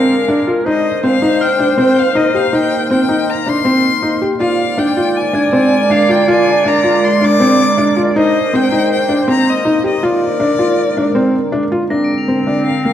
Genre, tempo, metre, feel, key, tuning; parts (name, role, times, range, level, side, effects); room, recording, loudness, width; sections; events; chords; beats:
contemporary instrumental, chamber music in an uneven meter; 160 BPM; 5/4; straight; Bb mixolydian; A4 = 441 Hz
clear violin; melody; 0.0-12.9 s; D5 to D6; -19 LUFS; left 5 dB
warm clarinet; second line; 0.0-12.9 s; C4 to D5; -17 LUFS; equal
deep dark ambient pad; sustained chords; 0.0-12.9 s; D3 to C5; -20 LUFS; right 2 dB; chorus, built-in reverb
felt-muted upright piano; arpeggios; 0.0-12.9 s; Bb3 to G4; -14 LUFS; equal
crotales; texture; 1.4-1.9, 5.3-6.4, 11.9-12.7 s; F6 to F7; -25 LUFS; left 2 dB
moderate scoring stage reverb, RT60 1.6 s; dark, warm production; -11 LUFS; side -10 dB against mid
0.0-11.9 A section; 11.9-12.9 B section
0.0 Bb7; 0.7 Cm7; 4.4 Bb7; 8.2 Cm7; 10.0 Bb7; 11.9 Bbadd9
0.28 | 0.66 1.03 1.41 1.78 2.16 | 2.53 2.91 3.28 3.65 4.03 | 4.40 4.78 5.15 5.53 5.90 | 6.28 6.65 7.03 7.40 7.78 | 8.15 8.53 8.90 9.28 9.65 | 10.03 10.40 10.78 11.15 11.53 | 11.91 12.28 12.66